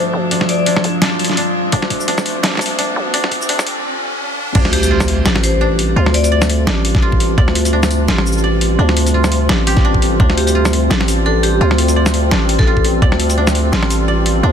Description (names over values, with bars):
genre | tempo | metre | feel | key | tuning
half-time drum and bass | 170 BPM | 4/4 | swing 56% on 16ths, half-time | D minor | A4 = 440 Hz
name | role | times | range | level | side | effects
deep dark ambient pad | sustained chords | 0.0-14.5 s | G3 to A4 | -22 LUFS | left 1 dB | chorus, built-in reverb, sidechain pumping
koto | arpeggios | 0.0-14.5 s | D4 to D5 | -22 LUFS | right 2 dB | low-pass filter, dub echo
growling 808-style bass | bass | 0.0-14.5 s | E1 to D2 | -16 LUFS | equal | high-pass filter
riser and impact | sound effects | 1.4-6.0 s | none | -25 LUFS | equal | none
metallic inharmonic drone | texture | 0.0-3.8 s | F3 to F4 | -22 LUFS | left 1 dB | chorus, built-in reverb
boom bap sampler-style drum kit | drums | 0.3-14.3 s | crash cymbal, hi-hat, shaker, snare drum | -19 LUFS | equal | none
vibraphone with hard mallets | melody | 0.5-0.6, 4.7-6.3, 10.4-12.8 s | G4 to D5 | -22 LUFS | left 2 dB | ping-pong delay
electronic kick drum | drums | 1.7-4.6, 6.9-7.5, 9.8-10.3, 12.6-13.1 s | none | -14 LUFS | equal | none
room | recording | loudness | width
light reverb | dense, heavily limited modern master, high-pass filter | -12 LUFS | side -8 dB against mid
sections
0.0-4.6 A section; 4.6-14.5 B section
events
build-up 0.0-4.6; filter sweep on ambient pad 0.0-4.6; filter sweep 0.0-4.6; riser 1.4-4.6; break 3.8-4.6; drop 4.6-14.5; impact 4.6-6.0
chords
0.0 Dm